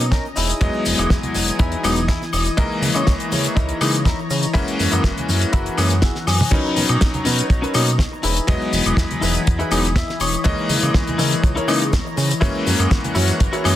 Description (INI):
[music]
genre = nu-disco, nu disco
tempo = 122 BPM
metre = 4/4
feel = straight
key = C# dorian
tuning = A4 = 440 Hz
[part]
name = lush unison pad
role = sustained chords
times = 0.0-13.8 s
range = E3 to B5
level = -26 LUFS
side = left 2 dB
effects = chorus, sidechain pumping
[part]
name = chorused synth bass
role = bass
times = 0.0-13.8 s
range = E1 to C#3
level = -22 LUFS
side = equal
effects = sidechain pumping
[part]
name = damped 70s drum kit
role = drums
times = 0.0-13.8 s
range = crash cymbal, hi-hat, shaker, snare drum, toms, woodblock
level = -22 LUFS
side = left 2 dB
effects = none
[part]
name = tube shaker and congas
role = percussion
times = 0.0-13.8 s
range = none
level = -32 LUFS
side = right 1 dB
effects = none
[part]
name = direct-recorded clean electric guitar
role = riff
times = 0.1-13.7 s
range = C#4 to G#5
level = -27 LUFS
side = left 2 dB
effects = lush chorus, digital delay
[part]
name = kick drum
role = drums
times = 0.1-13.5 s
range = none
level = -18 LUFS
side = equal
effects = soft clipping on snare
[part]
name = bright electric grand piano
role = accompaniment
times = 0.6-13.8 s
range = E3 to D#5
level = -23 LUFS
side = left 2 dB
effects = sidechain pumping, digital delay
[sound]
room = light reverb, small room reverb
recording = dense, heavily limited modern master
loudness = -16 LUFS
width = side -13 dB against mid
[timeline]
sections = 0.0-6.5 A section; 6.5-13.8 B section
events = clean electric guitar fill 5.8-6.5, 9.5-10.5; drum fill 6.3; drop 6.5-13.8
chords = 0.4 Emaj7; 2.6 C#m69; 4.6 F#7; 6.5 Bmaj9; 8.2 Emaj7; 10.5 C#m69; 12.4 F#7